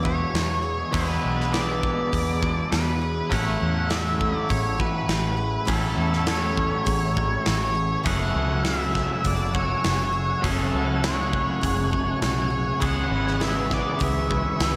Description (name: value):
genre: rock, shoegaze and dream pop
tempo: 101 BPM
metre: 4/4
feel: straight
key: unclear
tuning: A4 = 437 Hz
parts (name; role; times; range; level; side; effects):
- octave-fuzz lead guitar; melody; 0.0-14.8 s; A4 to F#5; -30 LUFS; equal; distortion, tape echo
- picked plugged-in twelve-string acoustic guitar; arpeggios; 0.0-14.8 s; E4 to B4; -38 LUFS; equal; lush chorus, tape echo
- crunchy overdriven guitar; riff; 0.0-14.8 s; F#2 to G#4; -31 LUFS; equal; lush chorus
- twangy electric guitar; riff; 0.0-14.8 s; E2 to G#4; -33 LUFS; equal; reverse reverb
- vintage muted fingered electric bass; bass; 0.0-14.8 s; F#1 to E2; -30 LUFS; equal; none
- gated 80s drum kit; drums; 0.1-14.7 s; hi-hat, kick drum, snare drum; -31 LUFS; equal; none
- soft string machine; sustained chords; 8.9-14.8 s; B4 to F#6; -37 LUFS; equal; ensemble chorus
room: wet lush hall reverb, RT60 2.4 s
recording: dreamy mix soaked in reverb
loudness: -24 LUFS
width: mono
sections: 0.0-14.8 A section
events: none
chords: 0.0 E9; 3.3 A6; 8.1 F#m9; 12.8 C#m7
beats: 0.33 | 0.92 1.52 2.11 2.71 | 3.30 3.89 4.49 5.08 | 5.68 6.27 6.87 7.46 | 8.06 8.65 9.25 9.84 | 10.44 11.03 11.63 12.22 | 12.82 13.41 14.01 14.61